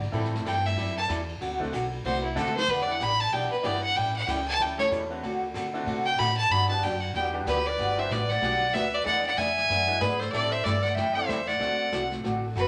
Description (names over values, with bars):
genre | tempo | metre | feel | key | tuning
country, western swing | 188 BPM | 4/4 | swing 61% on 8ths | G major | A4 = 440 Hz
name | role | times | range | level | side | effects
upright bass | bass | 0.0-12.7 s | F#1 to D3 | -35 LUFS | equal | none
vintage brush drum kit | drums | 0.0-12.7 s | brushed snare drum, crash cymbal, hi-hat, kick drum, ride cymbal, snare drum, toms | -40 LUFS | equal | none
bright upright piano | accompaniment | 0.1-12.5 s | G3 to D5 | -39 LUFS | equal | none
picked steel-string acoustic guitar | accompaniment | 0.1-12.7 s | D3 to A4 | -35 LUFS | equal | none
clear fiddle | melody | 0.5-12.7 s | E4 to B5 | -29 LUFS | equal | none
warm clarinet | second line | 7.5-12.7 s | F#4 to E5 | -33 LUFS | equal | none
room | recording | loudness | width
wet studio reverb, RT60 0.9 s | none | -27 LUFS | mono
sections
0.0-7.8 A section; 7.8-12.7 B section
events
fiddle solo 0.0-7.8; drum fill 2.4-2.7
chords
0.1 Am7; 1.4 D7; 2.7 Em7; 4.0 A7; 5.2 D7; 6.5 Gmaj7; 9.1 E7; 10.3 Am7; 11.6 D7